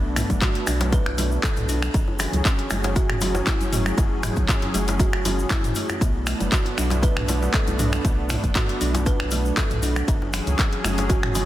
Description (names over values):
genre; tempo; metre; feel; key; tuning
afro house; 118 BPM; 4/4; swing 53% on 16ths; F# minor; A4 = 438 Hz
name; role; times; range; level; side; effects
warm analog pad; sustained chords; 0.0-11.5 s; F#3 to G#4; -30 LUFS; equal; chorus, sidechain pumping
warm sub bass; bass; 0.0-11.5 s; F#1 to C#2; -26 LUFS; equal; sidechain pumping
buzzing kalimba; arpeggios; 0.2-11.4 s; E3 to B4; -29 LUFS; right 2 dB; sidechain pumping, dub echo
house drum kit; drums; 0.2-11.5 s; finger snaps, handclaps, hi-hat, toms; -27 LUFS; equal; soft clipping on snare
congas; percussion; 0.2-11.5 s; none; -34 LUFS; equal; none
djembe; percussion; 0.2-11.5 s; none; -34 LUFS; left 1 dB; none
egg shaker; percussion; 0.2-11.5 s; none; -37 LUFS; left 2 dB; none
electronic kick drum; drums; 0.3-11.2 s; none; -22 LUFS; equal; none
room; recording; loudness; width
light reverb, small room ambience; dense, heavily limited modern master; -20 LUFS; side -14 dB against mid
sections
0.0-11.5 A section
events
none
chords
0.0 Bm7; 1.9 F#7(no3); 6.0 Bm7; 10.1 F#5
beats
0.42 0.93 1.44 | 1.94 2.45 2.96 3.47 | 3.98 4.49 5.00 5.50 | 6.01 6.52 7.03 7.54 | 8.05 8.55 9.06 9.57 | 10.08 10.59 11.10